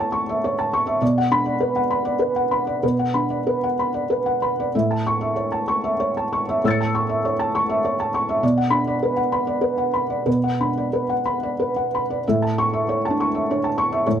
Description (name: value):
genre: neoclassical minimalist piano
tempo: 89-104 BPM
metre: 3/4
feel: rubato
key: A major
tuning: A4 = 440 Hz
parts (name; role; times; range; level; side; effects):
- felt-muted upright piano; solo; 0.0-14.2 s; A2 to C#7; -19 LUFS; equal; none
room: little or no reverb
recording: close, detailed microphones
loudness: -19 LUFS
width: side -9 dB against mid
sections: 0.0-12.2 A section; 12.2-14.2 A section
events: none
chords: 0.0 A; 1.0 Bm; 4.7 A; 8.4 Bm; 12.2 A